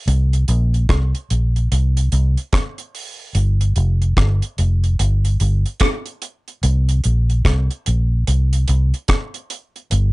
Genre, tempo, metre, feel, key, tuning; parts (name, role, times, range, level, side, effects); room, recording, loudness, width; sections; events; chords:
roots reggae; 73 BPM; 4/4; swing 62% on 16ths; A4 = 440 Hz
vintage muted fingered electric bass; bass; 0.1-10.1 s; F1 to C2; -15 LUFS; equal
deep reggae drum kit; drums; 0.1-10.1 s; hi-hat, kick drum, rim click; -21 LUFS; equal
little or no reverb; nothing above 10.6 kHz; -15 LUFS; side -22 dB against mid
0.1-10.1 A section